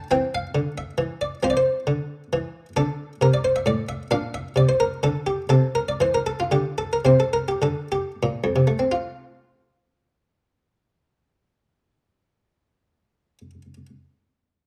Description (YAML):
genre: classical, baroque-style suite movement for harpsichord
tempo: 58-92 BPM (dotted quarters)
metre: 12/8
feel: rubato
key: F major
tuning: A4 = 440 Hz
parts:
  - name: buff-stop harpsichord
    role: solo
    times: 0.0-13.9 s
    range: F2 to G5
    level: -22 LUFS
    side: equal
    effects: none
room: light reverb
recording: dark, warm production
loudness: -23 LUFS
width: mono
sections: 0.0-8.9 A section; 8.9-12.8 B section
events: slowing down 3.7-8.9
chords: 0.1 C; 1.4 F5; 2.8 D5; 4.1 Bbmaj9#11; 5.5 C13; 7.0 C5; 8.9 F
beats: | 0.12 0.77 1.44 2.11 | 2.77 3.44 4.12 4.80 | 5.51 6.25 7.04 7.92 | 8.91 9.90 10.88 11.86